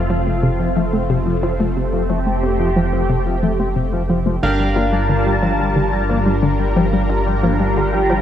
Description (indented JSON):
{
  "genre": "synthwave",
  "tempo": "90 BPM",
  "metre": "4/4",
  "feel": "straight",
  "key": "unclear",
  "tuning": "A4 = 435 Hz",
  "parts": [
    { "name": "analog string pad", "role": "sustained chords", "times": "0.0-8.2 s", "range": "G3 to A5", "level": "-20 LUFS", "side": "equal", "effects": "ensemble chorus, phaser, vintage 12-bit sampler grit" },
    { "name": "bright electric grand piano", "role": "stabs", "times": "0.0-8.2 s", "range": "C4 to F5", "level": "-25 LUFS", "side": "right 1 dB", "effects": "lush chorus, digital delay" },
    { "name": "dark detuned saw bass", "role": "bass", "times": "0.0-8.2 s", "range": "F1 to G1", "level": "-21 LUFS", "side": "equal", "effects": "none" },
    { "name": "analog pluck", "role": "arpeggios", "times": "0.1-8.2 s", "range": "C3 to A3", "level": "-21 LUFS", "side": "left 1 dB", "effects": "chorus, digital delay" },
    { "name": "semi-hollow electric guitar", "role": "riff", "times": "0.1-8.2 s", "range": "F3 to D4", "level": "-25 LUFS", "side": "left 3 dB", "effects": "wide subtle chorus, low-pass filter, digital delay" }
  ],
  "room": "moderate plate reverb, RT60 1.5 s, studio reverb",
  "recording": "bright 1980s-style digital production",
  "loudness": "-15 LUFS",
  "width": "side -10 dB against mid",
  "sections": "0.0-8.2 A section",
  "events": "none",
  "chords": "0.0 F; 4.4 Gm7",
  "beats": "0.43 1.10 | 1.76 2.43 3.10 3.77 | 4.43 5.10 5.76 6.43 | 7.10 7.76"
}